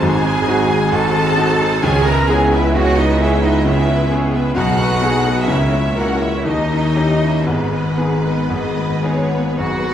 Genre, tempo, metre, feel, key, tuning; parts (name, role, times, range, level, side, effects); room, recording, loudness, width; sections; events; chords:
classical, romantic movement for piano and orchestra; 54-68 BPM; 3/4; rubato; G# minor; A4 = 441 Hz
bright baby grand piano; melody; 0.0-9.9 s; G#1 to A#4; -19 LUFS; left 2 dB
rich studio violin section; melody; 0.0-9.9 s; B4 to F#5; -30 LUFS; left 1 dB
rich studio violin section; second line; 0.0-9.9 s; F#4 to A#5; -23 LUFS; left 1 dB
rich studio viola section; accompaniment; 0.0-9.9 s; G#3 to C#5; -24 LUFS; right 1 dB
mellow tuba; bass; 0.0-9.9 s; G#1 to D#2; -22 LUFS; equal
rich studio double bass section; bass; 0.0-9.9 s; G#1 to D#2; -22 LUFS; right 2 dB
warm studio cello section; bass; 0.0-9.9 s; F#3 to A#4; -21 LUFS; right 2 dB
clear oboe; second line; 9.6-9.9 s; F#4; -23 LUFS; right 1 dB
wet scoring stage reverb, RT60 1.7 s; heard from further back in the room; -14 LUFS; side -10 dB against mid
0.0-9.9 A section
0.0 G#7; 1.8 C#m7; 4.6 G#m/B; 5.5 A#dim/C#; 6.5 D#7b9; 7.5 G#m